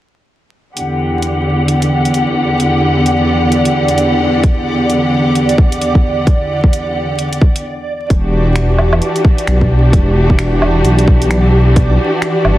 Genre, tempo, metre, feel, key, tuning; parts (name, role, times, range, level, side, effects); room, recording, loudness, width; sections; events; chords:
future garage; 131 BPM; 4/4; swing 61% on 16ths; E minor; A4 = 440 Hz
clear symphonic string section; sustained chords; 0.8-12.6 s; E2 to F#5; -14 LUFS; equal; sidechain pumping, low-pass filter
garage drum kit; drums; 0.8-12.6 s; finger snaps, hi-hat, woodblock; -21 LUFS; right 1 dB; soft clipping on snare
backwards swelling texture; texture; 1.7-12.6 s; D5; -22 LUFS; right 2 dB; built-in reverb
electronic kick drum; drums; 4.4-11.9 s; -10 LUFS; equal
dark detuned saw bass; bass; 8.1-12.6 s; E1 to B1; -12 LUFS; equal; sidechain pumping
light reverb, digital ambience; dense, heavily limited modern master, vinyl crackle; -10 LUFS; side -15 dB against mid
0.8-8.1 A section; 8.1-12.6 B section
stop 7.6-8.1
0.8 Em9